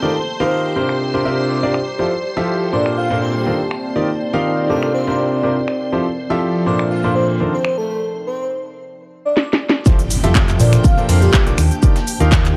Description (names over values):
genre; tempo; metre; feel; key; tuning
piano house; 122 BPM; 4/4; swing 54% on 16ths; F major; A4 = 440 Hz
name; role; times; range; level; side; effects
airy dreamy lead; melody; 0.0-11.4 s; G4 to F5; -25 LUFS; equal; chorus, digital delay
string machine, violins; sustained chords; 0.0-12.6 s; G4 to C6; -32 LUFS; equal; ensemble chorus, sidechain pumping
clear baby grand piano; riff; 0.0-12.5 s; Bb2 to F5; -22 LUFS; equal; sidechain pumping, digital delay
warbly tape-like pad; texture; 0.0-12.6 s; F3 to F5; -26 LUFS; equal; chorus, built-in reverb, sidechain pumping
house drum kit; drums; 0.9-12.5 s; cabasa, finger snaps, handclaps, hi-hat, snare drum; -22 LUFS; equal; low-pass filter on cymbals, low-pass filter on snare, low-pass filter on perc, low-pass filter on hats
breakbeat sampler-style drum kit; drums; 9.9-12.4 s; hi-hat, shaker, snare drum; -33 LUFS; equal; sidechain pumping on perc, high-pass filter on perc, sidechain pumping on hats, high-pass filter on hats, high-pass filter on snare
electronic kick drum; drums; 9.9-12.4 s; none; -16 LUFS; equal; none
impact; sound effects; 9.9-11.8 s; none; -27 LUFS; equal; none
overdriven fingered electric bass; bass; 10.2-12.5 s; F1 to Bb2; -17 LUFS; equal; sidechain pumping
room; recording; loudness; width
light reverb; none; -17 LUFS; mono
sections
0.0-9.9 A section; 9.9-12.6 B section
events
break 7.9-9.9; drum fill 9.4-9.9; drop 9.9-12.6; impact 9.9-11.8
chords
0.0 Ebmaj9; 0.8 C9sus4; 2.0 Fmaj9; 2.7 Bbmaj9; 3.7 Ebmaj9; 4.7 C9sus4; 5.9 Fmaj9; 6.7 Bbmaj9; 7.6 Eb5; 8.6 N.C.; 9.9 Fmaj9; 10.6 Bbmaj9; 11.6 Ebadd9